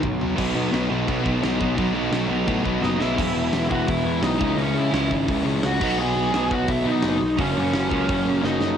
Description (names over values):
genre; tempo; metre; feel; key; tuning
punk rock; 171 BPM; 4/4; straight; E lydian from 3.2 s; A4 = 440 Hz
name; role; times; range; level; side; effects
overdriven electric guitar; riff; 0.0-8.8 s; F#2 to E4; -26 LUFS; right 10 dB; cassette tape
sludgy distorted guitar; riff; 0.0-8.8 s; E2 to C#4; -26 LUFS; left 9 dB; overdrive, cassette tape
thick fuzz guitar; riff; 0.0-3.2 s; B2 to F#4; -29 LUFS; equal; distortion, cassette tape
fuzz picked electric bass; bass; 0.0-8.8 s; E1 to C#3; -27 LUFS; equal; overdrive
big rock drum kit; drums; 0.0-8.7 s; crash cymbal, hi-hat, kick drum, snare drum, toms; -28 LUFS; equal; cassette tape
smooth overdriven lead guitar; melody; 2.8-8.8 s; C#4 to G#5; -26 LUFS; equal; cassette tape, tape echo
room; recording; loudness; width
light reverb; home recording on cassette; -20 LUFS; side -8 dB against mid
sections
0.4-3.2 A section; 3.2-8.8 B section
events
drum fill 0.0-0.4, 2.8-3.2, 8.4-8.8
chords
0.4 B; 3.2 E; 4.4 C#m; 5.8 B; 7.4 F#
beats
0.02 | 0.37 0.72 1.08 1.43 | 1.78 2.13 2.48 2.83 | 3.18 3.53 3.88 4.23 | 4.58 4.93 5.28 5.63 | 5.98 6.33 6.68 7.03 | 7.38 7.73 8.08 8.43